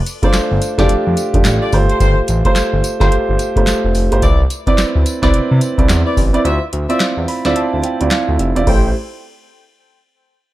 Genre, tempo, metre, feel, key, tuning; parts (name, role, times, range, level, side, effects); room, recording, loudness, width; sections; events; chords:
R&B, new jack swing; 108 BPM; 4/4; swing 61% on 16ths; A minor; A4 = 440 Hz
booming analog drum machine; drums; 0.1-8.9 s; crash cymbal, handclaps, hi-hat, kick drum, snare drum, tambourine; -17 LUFS; equal
dark grand piano; accompaniment; 0.2-8.9 s; A3 to B5; -17 LUFS; right 2 dB
warm horn section; stabs; 0.2-8.9 s; E4 to G5; -23 LUFS; left 3 dB; tape echo
smooth synth bass; bass; 0.2-8.9 s; E1 to C3; -17 LUFS; equal
little or no reverb; dark, warm production; -12 LUFS; side -15 dB against mid
0.0-8.7 A section; 8.7-10.5 B section
break 6.4-8.7; grand piano fill 7.0-8.7
0.0 F6; 1.7 G9sus4; 4.2 Cmaj9; 6.4 Dm9; 8.7 Am7